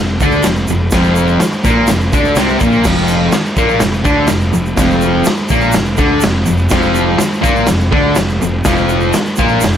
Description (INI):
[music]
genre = garage rock duo or trio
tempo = 124 BPM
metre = 4/4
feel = straight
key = unclear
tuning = A4 = 437 Hz
[part]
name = fuzz guitar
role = riff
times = 0.0-9.8 s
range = F2 to D4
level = -13 LUFS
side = equal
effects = distortion
[part]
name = fuzz fingered electric bass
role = bass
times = 0.0-9.8 s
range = F1 to D2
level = -19 LUFS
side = equal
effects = overdrive
[part]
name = raw garage drum kit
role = drums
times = 0.2-9.8 s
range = crash cymbal, kick drum, snare drum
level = -15 LUFS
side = equal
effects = none
[part]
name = egg shaker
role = percussion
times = 0.2-9.8 s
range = none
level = -28 LUFS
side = right 6 dB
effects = none
[sound]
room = light reverb, small room ambience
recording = none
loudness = -10 LUFS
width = side -9 dB against mid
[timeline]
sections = 0.0-2.9 A section; 2.9-9.8 B section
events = none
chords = 0.0 F5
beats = 0.46 | 0.94 1.42 1.89 2.37 | 2.85 3.33 3.81 4.30 | 4.78 5.26 5.75 6.23 | 6.72 7.20 7.69 8.17 | 8.66 9.15 9.64